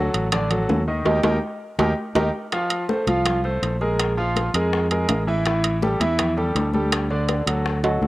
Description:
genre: latin, salsa.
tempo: 164 BPM.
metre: 4/4.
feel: straight.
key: unclear.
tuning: A4 = 440 Hz.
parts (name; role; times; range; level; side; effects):
bright concert grand piano; accompaniment; 0.0-8.1 s; D3 to F5; -23 LUFS; right 1 dB; cassette tape.
fingered electric bass; bass; 0.0-8.1 s; A1 to F2; -24 LUFS; equal; none.
bongos; percussion; 0.1-8.1 s; none; -32 LUFS; left 6 dB; none.
congas; percussion; 0.1-8.1 s; none; -29 LUFS; left 2 dB; none.
timbales; percussion; 0.1-7.9 s; none; -26 LUFS; right 3 dB; none.
room: moderate spring reverb, RT60 1.8 s, small room ambience.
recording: home recording on cassette.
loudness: -19 LUFS.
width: side -17 dB against mid.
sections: 0.0-2.5 A section; 2.5-8.1 B section.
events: band accent 1.1-2.5; drum fill 1.4-2.5, 7.8.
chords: 0.0 D; 1.1 Eb; 2.5 F; 4.0 Bb5; 5.5 A5; 6.9 Dsus4.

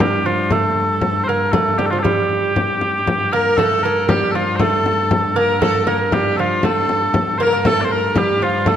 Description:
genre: medieval dance.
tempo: 118 BPM.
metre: 2/4.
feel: straight.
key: G minor.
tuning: A4 = 445 Hz.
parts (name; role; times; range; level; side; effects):
mellow small bagpipes; melody; 0.0-8.8 s; F4 to D5; -19 LUFS; equal; none.
lute; second line; 0.0-8.8 s; F3 to Bb3; -22 LUFS; right 5 dB; none.
rich viola da gamba; drone; 0.0-8.8 s; G2; -24 LUFS; left 1 dB; none.
frame drum; percussion; 0.0-8.8 s; none; -21 LUFS; left 2 dB; none.
rich fiddle; second line; 3.3-8.8 s; F4 to Bb4; -23 LUFS; left 3 dB; none.
room: wet concert hall reverb, RT60 1.8 s.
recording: none.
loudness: -15 LUFS.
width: side -9 dB against mid.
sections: 0.0-3.1 A section; 3.1-8.8 A section.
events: none.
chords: none.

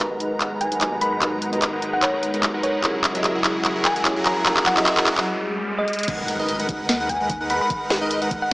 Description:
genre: future bass.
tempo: 148 BPM.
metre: 4/4.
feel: swing 54% on 16ths, half-time.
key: G# minor.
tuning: A4 = 440 Hz.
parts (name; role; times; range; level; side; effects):
felt-muted upright piano; accompaniment; 0.0-5.9 s; F#3 to D#5; -29 LUFS; equal; sidechain pumping, digital delay.
rich studio string section; sustained chords; 0.0-5.2 s; F#2 to A#5; -35 LUFS; equal; vintage 12-bit sampler grit, sidechain pumping.
supersaw chords; riff; 0.0-8.5 s; F#3 to F#5; -25 LUFS; equal; sidechain pumping, low-pass filter.
trap drum kit; drums; 0.0-8.4 s; crash cymbal, handclaps, hi-hat, snare drum; -22 LUFS; equal; none.
riser, swell and impact; sound effects; 3.7-7.7 s; none; -32 LUFS; equal; none.
thumb-piano-like synth pluck; melody; 0.6-8.5 s; C#5 to B5; -25 LUFS; equal; chorus, sidechain pumping, digital delay.
airy dreamy lead; arpeggios; 6.1-8.5 s; D#5 to F#5; -28 LUFS; equal; chorus, sidechain pumping.
saturated sub bass; bass; 6.1-8.5 s; G#1 to D#2; -40 LUFS; equal; sidechain pumping.
electronic kick drum; drums; 6.1-8.4 s; none; -32 LUFS; equal; none.
room: moderate lush hall reverb, RT60 1.6 s.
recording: small speaker sound.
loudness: -19 LUFS.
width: side -22 dB against mid.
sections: 0.0-6.1 A section; 6.1-8.5 B section.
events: build-up 0.0-6.1; drum fill 0.0-5.3, 5.9; filter sweep on supersaw synth 0.0-6.1; riser 3.7-6.1; break 5.3-6.1; swell 5.3-6.1; drop 6.1-8.5; impact 6.1-7.7.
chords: 0.0 G#m9; 2.8 F#9; 5.9 N.C.; 6.1 G#m9.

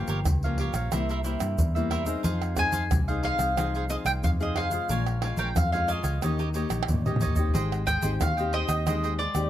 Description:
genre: samba and choro.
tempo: 91 BPM.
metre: 4/4.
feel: straight.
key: unclear.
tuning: A4 = 440 Hz.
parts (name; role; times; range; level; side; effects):
mandolin; melody; 0.0-9.5 s; D5 to Ab5; -29 LUFS; equal; none.
cavaquinho; accompaniment; 0.0-9.5 s; Eb4 to Ab5; -34 LUFS; right 5 dB; none.
nylon-string guitar; accompaniment; 0.0-9.5 s; F2 to Ab4; -33 LUFS; left 6 dB; none.
fingered electric bass; bass; 0.0-9.5 s; G1 to G2; -29 LUFS; equal; none.
egg shaker, pandeiro, surdo and tamborim; percussion; 0.1-9.5 s; none; -28 LUFS; equal; none.
room: light reverb.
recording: close, detailed microphones.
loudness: -24 LUFS.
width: side -12 dB against mid.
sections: 0.0-9.5 A section.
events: drum fill 6.7-7.5.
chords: 0.0 Gm7b5; 0.9 C7; 2.2 Fm7; 4.9 Bbm7; 6.2 Eb7; 7.5 Abmaj7.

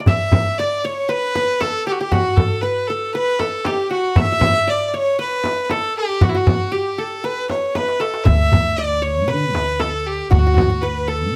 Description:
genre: Arabic maqam ensemble.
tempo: 117 BPM.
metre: 4/4.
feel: straight.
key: unclear.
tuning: A4 = 441 Hz.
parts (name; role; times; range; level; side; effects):
qanun; second line; 0.0-11.4 s; F#4 to E5; -27 LUFS; equal; none.
rich violin; melody; 0.1-11.4 s; E4 to E5; -22 LUFS; equal; none.
darbuka; percussion; 0.1-11.1 s; none; -25 LUFS; equal; none.
frame drum; percussion; 0.1-10.7 s; none; -22 LUFS; equal; none.
upright bass; bass; 8.3-11.4 s; D2 to D3; -22 LUFS; equal; none.
room: moderate studio reverb, RT60 0.6 s.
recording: none.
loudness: -19 LUFS.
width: mono.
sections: 0.1-11.4 A section.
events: drum fill 7.8-8.3.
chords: none.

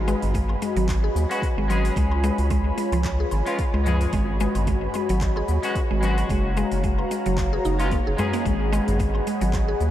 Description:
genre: organic downtempo.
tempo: 111 BPM.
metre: 4/4.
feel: swing 55% on 16ths.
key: G# dorian.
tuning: A4 = 440 Hz.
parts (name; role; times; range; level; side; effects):
warm analog pad; sustained chords; 0.0-9.9 s; E#4 to B5; -29 LUFS; equal; chorus, sidechain pumping.
mallet-like synth pluck; arpeggios; 0.0-9.9 s; E#3 to G#4; -28 LUFS; equal; chorus, vintage 12-bit sampler grit, analog delay.
round analog bass; bass; 0.0-9.9 s; F#1 to D#2; -23 LUFS; equal; sidechain pumping.
wind-like tuned noise texture; texture; 0.4-9.9 s; C#5; -38 LUFS; left 2 dB; built-in reverb.
deep house drum kit; drums; 0.1-9.9 s; handclaps, hi-hat, shaker, woodblock; -38 LUFS; left 1 dB; overdrive, studio reverb.
tabla; percussion; 0.1-9.8 s; none; -35 LUFS; left 1 dB; none.
electronic kick drum; drums; 0.3-9.7 s; none; -26 LUFS; equal; overdrive, studio reverb.
clean electric guitar; accompaniment; 1.3-9.9 s; G#3 to G#4; -32 LUFS; left 2 dB; analog chorus, sidechain pumping, analog delay.
room: light reverb, digital ambience.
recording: none.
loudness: -20 LUFS.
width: side -12 dB against mid.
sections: 0.0-9.9 A section.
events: none.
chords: 0.0 G#m7; 2.0 C#7; 4.1 G#m7; 6.3 F#maj7; 8.5 G#m7.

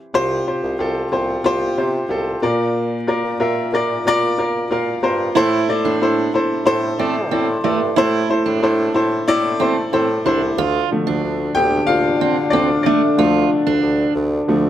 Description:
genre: pop.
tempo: 92 BPM.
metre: 4/4.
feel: straight.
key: D minor.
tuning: A4 = 443 Hz.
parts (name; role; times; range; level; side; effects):
clear upright piano; accompaniment; 0.0-14.7 s; A2 to G5; -18 LUFS; left 1 dB; none.
warm bassoon; bass; 0.1-14.7 s; C2 to Bb3; -23 LUFS; right 1 dB; none.
fingerpicked steel-string acoustic guitar; riff; 5.4-14.1 s; A3 to F4; -22 LUFS; right 9 dB; none.
mellow French horn section; second line; 10.6-14.7 s; D3 to D4; -21 LUFS; left 3 dB; none.
room: light reverb.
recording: none.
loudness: -16 LUFS.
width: side -11 dB against mid.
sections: 0.1-10.6 A section; 10.6-14.7 B section.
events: upright piano solo 10.6-14.7.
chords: 0.1 Csus4; 2.4 Bb; 5.4 Am; 10.6 Dm.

